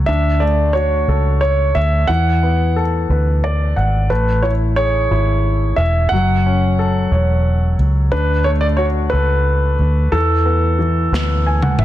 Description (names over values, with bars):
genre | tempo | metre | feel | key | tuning
six-eight pop ballad | 60 BPM (dotted quarters) | 6/8 | straight | unclear | A4 = 441 Hz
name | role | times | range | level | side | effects
clear baby grand piano | accompaniment | 0.0-11.8 s | E3 to G#5 | -21 LUFS | left 3 dB | none
vintage muted fingered electric bass | bass | 0.0-11.8 s | E1 to E2 | -16 LUFS | equal | none
clear concert grand piano | melody | 0.1-11.8 s | A4 to F#5 | -19 LUFS | right 2 dB | none
modern studio drum kit | drums | 11.1-11.8 s | snare drum, toms | -19 LUFS | equal | none
room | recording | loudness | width
light reverb, small room ambience | dense, heavily limited modern master | -14 LUFS | side -13 dB against mid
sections
0.0-11.8 A section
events
grand piano fill 3.1-4.1, 11.1-11.8; drum fill 11.1-11.8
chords
0.1 Dmaj7; 2.1 E7sus4; 4.1 Amaj7; 6.1 F#m; 8.1 Dmaj7; 10.1 E7sus4